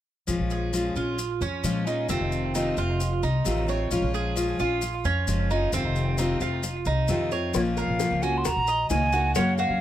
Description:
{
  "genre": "latin, Cuban son and guajira",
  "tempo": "132 BPM",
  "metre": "4/4",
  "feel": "straight",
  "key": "Bb minor",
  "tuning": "A4 = 441 Hz",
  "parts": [
    { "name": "picked steel-string acoustic guitar", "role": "accompaniment", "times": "0.3-9.8 s", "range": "C3 to Gb4", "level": "-27 LUFS", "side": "left 3 dB", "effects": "none" },
    { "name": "upright bass", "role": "bass", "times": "0.3-9.8 s", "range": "F1 to Bb2", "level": "-28 LUFS", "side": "equal", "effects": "none" },
    { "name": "maracas", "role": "percussion", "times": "0.3-9.8 s", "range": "none", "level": "-36 LUFS", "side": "left 5 dB", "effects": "none" },
    { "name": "Cuban tres", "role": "arpeggios", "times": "0.5-9.8 s", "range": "C4 to Eb5", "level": "-29 LUFS", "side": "right 4 dB", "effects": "analog delay" },
    { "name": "bongos", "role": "percussion", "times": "7.5-9.8 s", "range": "none", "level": "-32 LUFS", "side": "left 5 dB", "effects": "none" },
    { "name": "hollow concert flute", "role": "melody", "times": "7.6-9.8 s", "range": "Db5 to C6", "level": "-26 LUFS", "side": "right 1 dB", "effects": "none" }
  ],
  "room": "light reverb",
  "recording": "close, detailed microphones",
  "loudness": "-23 LUFS",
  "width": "side -12 dB against mid",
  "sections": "0.3-7.5 A section; 7.5-9.8 B section",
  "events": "none",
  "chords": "0.3 Bbm7; 2.1 F7; 3.9 Bbm7; 5.7 F7; 7.5 Bbm; 8.4 Ebm",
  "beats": "| 0.28 0.74 1.19 1.64 | 2.10 2.55 3.00 3.46 | 3.91 4.37 4.82 5.27 | 5.73 6.18 6.63 7.09 | 7.54 8.00 8.45 8.90 | 9.36"
}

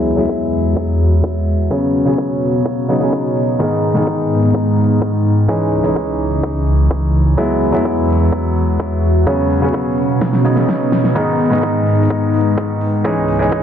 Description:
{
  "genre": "EDM, festival progressive house",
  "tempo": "127 BPM",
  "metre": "4/4",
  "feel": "straight",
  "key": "G# minor",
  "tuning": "A4 = 441 Hz",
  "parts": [
    { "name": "bright concert grand piano", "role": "accompaniment", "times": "0.0-13.6 s", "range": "G#2 to E4", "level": "-16 LUFS", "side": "equal", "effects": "sidechain pumping, ping-pong delay" },
    { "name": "lush unison pad", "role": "sustained chords", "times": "0.0-13.6 s", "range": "C#2 to F#4", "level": "-16 LUFS", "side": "equal", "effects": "chorus, sidechain pumping" },
    { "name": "big-room dance drum kit", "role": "drums", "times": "0.1-13.4 s", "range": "hi-hat, snare drum", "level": "-19 LUFS", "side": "equal", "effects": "low-pass filter on hats, studio reverb, low-pass filter on snare" },
    { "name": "electronic kick drum", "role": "drums", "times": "0.3-13.6 s", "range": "none", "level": "-25 LUFS", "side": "equal", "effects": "high-pass filter on kick, studio reverb" }
  ],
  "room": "light reverb",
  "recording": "low-pass filter",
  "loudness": "-13 LUFS",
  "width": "side -9 dB against mid",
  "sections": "0.0-13.6 A section",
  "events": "filter sweep on drum 0.0-13.6; filter sweep on analog synth pad 0.0-13.6; filter sweep 0.0-13.6; drum fill 10.2-11.2",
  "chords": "0.0 Eadd9; 1.7 Bsus2; 3.6 G#m; 5.5 C#madd9; 7.4 Eadd9; 9.3 Bsus2; 11.2 G#m; 13.0 C#madd9",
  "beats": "0.29 0.77 1.24 | 1.71 2.18 2.65 3.13 | 3.60 4.07 4.54 5.02 | 5.49 5.96 6.43 6.91 | 7.38 7.85 8.32 8.80 | 9.27 9.74 10.21 10.69 | 11.16 11.63 12.10 12.58 | 13.05 13.52"
}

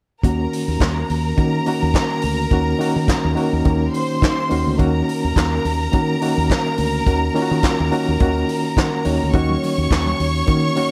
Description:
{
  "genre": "disco",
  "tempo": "106 BPM",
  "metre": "4/4",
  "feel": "swing 56% on 16ths",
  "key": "Eb dorian",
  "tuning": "A4 = 440 Hz",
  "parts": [
    { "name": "clear studio string section", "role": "second line", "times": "0.2-10.9 s", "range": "Bb4 to Db6", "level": "-26 LUFS", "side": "equal", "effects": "none" },
    { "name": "reed electric piano", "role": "accompaniment", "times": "0.2-10.9 s", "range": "Eb3 to Gb5", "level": "-23 LUFS", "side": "equal", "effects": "overdrive, fast tremolo" },
    { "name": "fingered electric bass", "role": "bass", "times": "0.2-10.7 s", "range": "D2 to Eb3", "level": "-24 LUFS", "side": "equal", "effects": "none" },
    { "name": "vintage drum kit", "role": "drums", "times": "0.2-10.9 s", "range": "handclaps, hi-hat, kick drum, snare drum", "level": "-24 LUFS", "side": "equal", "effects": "none" },
    { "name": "congas", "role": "percussion", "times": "9.3-10.9 s", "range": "none", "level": "-32 LUFS", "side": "equal", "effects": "none" }
  ],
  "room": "light reverb",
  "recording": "none",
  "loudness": "-19 LUFS",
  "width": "mono",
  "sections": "0.2-10.9 A section",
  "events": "reed electric piano fill 8.5-9.3",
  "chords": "0.2 Ebm7",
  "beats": "| 0.24 0.81 1.38 1.95 | 2.52 3.09 3.65 4.22 | 4.79 5.36 5.93 6.50 | 7.07 7.63 8.20 8.77 | 9.34 9.91 10.48"
}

